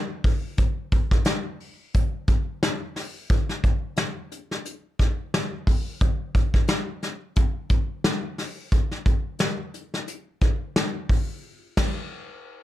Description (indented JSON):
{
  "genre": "funk",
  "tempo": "89 BPM",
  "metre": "4/4",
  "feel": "swing 56% on 16ths",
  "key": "none",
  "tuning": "none",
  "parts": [
    { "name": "soft brush drum kit", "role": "drums", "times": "0.2-12.0 s", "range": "crash cymbal, hi-hat, kick drum, snare drum", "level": "-23 LUFS", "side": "equal", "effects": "none" }
  ],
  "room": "little or no reverb",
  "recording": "none",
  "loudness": "-23 LUFS",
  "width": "side -14 dB against mid",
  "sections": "0.0-12.6 A section",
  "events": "band accent 11.4-12.6",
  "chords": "none"
}